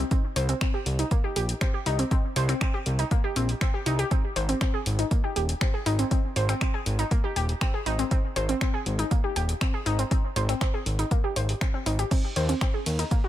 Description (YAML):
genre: melodic techno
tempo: 120 BPM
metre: 4/4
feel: straight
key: unclear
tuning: A4 = 443 Hz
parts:
  - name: warbly dusty pluck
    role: arpeggios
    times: 0.0-13.3 s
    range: Bb3 to C5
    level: -29 LUFS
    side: equal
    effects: chorus, sidechain pumping, dub echo
  - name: fat analog bass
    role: bass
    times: 0.0-13.0 s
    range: Eb1 to Eb2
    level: -26 LUFS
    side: equal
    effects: tube saturation, sidechain pumping
  - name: electronic kick drum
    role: drums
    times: 0.1-13.2 s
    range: none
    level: -25 LUFS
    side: equal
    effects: none
  - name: punchy analog drum machine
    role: drums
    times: 0.1-13.2 s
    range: crash cymbal, finger snaps, hi-hat, ride cymbal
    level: -33 LUFS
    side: equal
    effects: sidechain pumping on toms, sidechain pumping on hats, sidechain pumping on cymbals
room: digital ambience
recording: none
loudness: -24 LUFS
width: side -13 dB against mid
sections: 0.0-13.3 A section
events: none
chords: 0.0 C5; 4.1 Ab; 12.1 N.C.